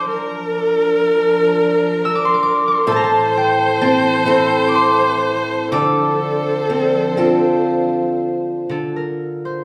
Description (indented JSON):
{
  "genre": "celtic folk, Celtic slow air",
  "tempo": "60-66 BPM",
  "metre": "3/4",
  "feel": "rubato",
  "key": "D minor",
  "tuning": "A4 = 439 Hz",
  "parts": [
    { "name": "concert harp", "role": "melody", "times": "0.0-9.6 s", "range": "A4 to E6", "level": "-21 LUFS", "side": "equal", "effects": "none" },
    { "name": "clear viola", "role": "second line", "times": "0.0-8.2 s", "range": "A4 to C5", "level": "-21 LUFS", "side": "equal", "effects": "none" },
    { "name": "dark studio string section", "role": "sustained chords", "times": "0.0-8.7 s", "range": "E3 to C5", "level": "-25 LUFS", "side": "equal", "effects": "none" },
    { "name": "fingerpicked steel-string acoustic guitar", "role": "accompaniment", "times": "2.9-9.6 s", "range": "A2 to A4", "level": "-20 LUFS", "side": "equal", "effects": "none" }
  ],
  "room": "wet recital hall reverb, RT60 1.5 s",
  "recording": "recorded in a church or concert hall",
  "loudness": "-17 LUFS",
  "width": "mono",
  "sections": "0.0-8.7 A section",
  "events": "none",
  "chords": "0.1 Bb; 2.9 Am; 5.7 Dm7; 8.7 Dm",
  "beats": "| 0.09 1.02 1.94 | 2.86 3.79 4.74 | 5.71 6.69 7.68 | 8.69"
}